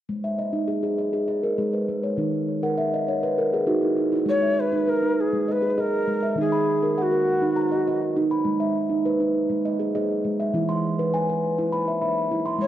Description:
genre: world meditative, meditative tuned percussion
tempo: 201 BPM (eighths)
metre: 7/8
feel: straight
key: G# minor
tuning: A4 = 440 Hz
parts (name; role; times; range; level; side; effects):
- steel tongue drum; arpeggios; 0.1-12.7 s; D#3 to B#5; -22 LUFS; right 1 dB; tape echo
- mellow Native American-style cedar flute; melody; 4.3-8.2, 12.6-12.7 s; F#4 to C#5; -23 LUFS; equal; none
room: wet echo chamber reverb, RT60 1.5 s, small room ambience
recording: worn, warbling old tape, cassette tape, warbly pitch drift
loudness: -21 LUFS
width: side -12 dB against mid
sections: 0.1-4.3 A section; 4.3-12.7 B section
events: steel tongue drum fill 2.6-4.3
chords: 0.1 G#m; 2.2 D#5; 4.3 G#m; 6.4 D#m; 8.5 G#m; 10.5 E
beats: | 0.09 0.39 0.69 0.99 1.29 1.59 1.89 | 2.19 2.49 2.79 3.09 3.39 3.69 3.99 | 4.29 4.59 4.88 5.18 5.48 5.78 6.08 | 6.38 6.67 6.97 7.27 7.57 7.87 8.16 | 8.46 8.76 9.05 9.35 9.65 9.95 10.24 | 10.54 10.83 11.13 11.43 11.72 12.02 12.32 | 12.61

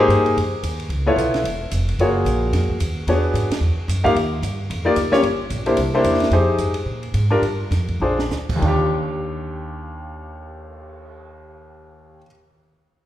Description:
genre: jazz, small-group swing and bop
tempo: 188-222 BPM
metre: 4/4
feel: swing 59% on 8ths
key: Eb major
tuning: A4 = 441 Hz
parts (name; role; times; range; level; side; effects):
- warm baby grand piano; accompaniment; 0.0-12.3 s; Eb2 to F5; -20 LUFS; left 1 dB; none
- upright bass; bass; 0.0-12.2 s; E1 to Bb2; -22 LUFS; equal; none
- compact cocktail drum kit; drums; 0.1-11.1 s; crash cymbal, cymbal swell, hi-hat, kick drum, ride cymbal, snare drum; -30 LUFS; right 2 dB; none
room: wet recital hall reverb, RT60 1.8 s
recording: recorded in a church or concert hall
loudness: -18 LUFS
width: side -12 dB against mid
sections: 0.0-6.3 A section; 6.3-8.6 B section; 8.6-11.2 C section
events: slowing down 6.3-8.6; drum fill 8.0-8.3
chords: 0.0 Abmaj9; 0.9 Db7alt; 2.0 Gbmaj9; 3.1 E13; 4.2 Ebmaj9; 5.2 Gm; 5.8 C7; 6.3 Fm9; 6.9 Bb7; 7.4 Fsus2; 8.0 Bb7; 8.6 Ebmaj9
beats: 0.10 0.38 0.65 | 0.92 1.19 1.46 1.73 | 2.00 2.27 2.54 2.81 | 3.08 3.35 3.62 3.89 | 4.16 4.43 4.70 4.97 | 5.24 5.51 5.78 6.05 | 6.32 6.59 6.86 7.14 | 7.42 7.71 8.00 8.31 | 8.62 8.94 9.26 9.57 | 9.89 10.21 10.53 10.85

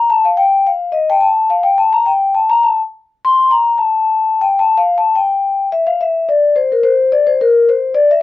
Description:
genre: balkan folk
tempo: 108 BPM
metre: 2/4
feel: straight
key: unclear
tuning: A4 = 440 Hz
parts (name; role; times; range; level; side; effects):
- vibraphone with soft mallets; solo; 0.0-8.2 s; Bb4 to C6; -11 LUFS; left 3 dB; cassette tape
room: light reverb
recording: home recording on cassette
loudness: -11 LUFS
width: side -15 dB against mid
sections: 0.0-5.7 A section; 5.7-8.2 B section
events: vibraphone solo 0.0-5.7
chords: none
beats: | 0.12 0.68 | 1.24 1.80 | 2.36 2.92 | 3.48 4.03 | 4.59 5.15 | 5.70 6.26 | 6.82 7.37 | 7.93

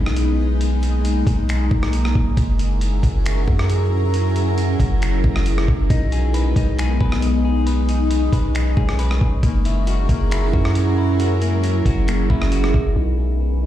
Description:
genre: hip hop, atmospheric cloud-rap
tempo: 136 BPM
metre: 4/4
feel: half-time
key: B major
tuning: A4 = 439 Hz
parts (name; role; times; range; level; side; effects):
- glassy FM pad; sustained chords; 0.0-13.7 s; F#3 to A#4; -23 LUFS; equal; ensemble chorus, built-in reverb, phaser, sidechain pumping, low-pass filter
- long sustained 808-style bass; bass; 0.0-13.7 s; F#1 to F#2; -19 LUFS; equal; none
- boom bap sampler-style drum kit; drums; 0.1-12.8 s; finger snaps, hi-hat, kick drum, rim click; -22 LUFS; equal; none
- semi-hollow electric guitar; arpeggios; 5.9-13.7 s; A#3 to B4; -28 LUFS; left 6 dB; low-pass filter, tape echo
room: little or no reverb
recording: played on a big sound system in a bare room, large studio reverb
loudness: -16 LUFS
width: side -12 dB against mid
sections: 0.0-13.0 A section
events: none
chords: 0.0 B6; 2.4 F#9; 5.9 B6; 9.4 F#9; 13.0 B6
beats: 0.17 | 0.61 1.05 1.49 1.93 | 2.37 2.81 3.25 3.70 | 4.14 4.58 5.02 5.46 | 5.90 6.34 6.79 7.23 | 7.67 8.11 8.55 8.99 | 9.43 9.87 10.31 10.76 | 11.20 11.64 12.08 12.52 | 12.96 13.40

